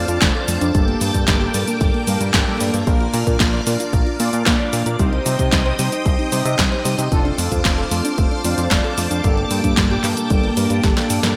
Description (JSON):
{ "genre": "italo disco", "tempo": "113 BPM", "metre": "4/4", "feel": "straight", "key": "unclear", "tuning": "A4 = 440 Hz", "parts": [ { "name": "string machine, full ensemble", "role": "sustained chords", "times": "0.0-11.3 s", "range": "Bb3 to Eb6", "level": "-26 LUFS", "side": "equal", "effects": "ensemble chorus" }, { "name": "analog synth brass", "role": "stabs", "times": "0.0-11.3 s", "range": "Bb3 to Eb5", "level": "-28 LUFS", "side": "equal", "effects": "chorus, delay" }, { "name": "fat analog bass", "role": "bass", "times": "0.0-11.3 s", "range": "F1 to C3", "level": "-25 LUFS", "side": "equal", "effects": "none" }, { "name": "soft round pluck", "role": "arpeggios", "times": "0.1-11.3 s", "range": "G3 to D5", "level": "-28 LUFS", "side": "equal", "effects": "chorus, cassette tape, delay" }, { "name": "house drum kit", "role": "drums", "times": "0.1-11.3 s", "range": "cabasa, handclaps, hi-hat, snare drum", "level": "-24 LUFS", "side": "equal", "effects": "gated reverb" }, { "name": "electronic kick drum", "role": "drums", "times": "0.2-10.9 s", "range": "none", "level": "-22 LUFS", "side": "equal", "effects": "none" } ], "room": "light reverb", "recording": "bright 1980s-style digital production", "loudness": "-18 LUFS", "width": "mono", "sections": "0.0-11.4 A section", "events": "drum fill 10.8-11.4", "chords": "0.0 F6; 0.7 Gmadd9; 2.9 Bb; 5.0 Cm; 7.1 F6; 9.2 Gmadd9" }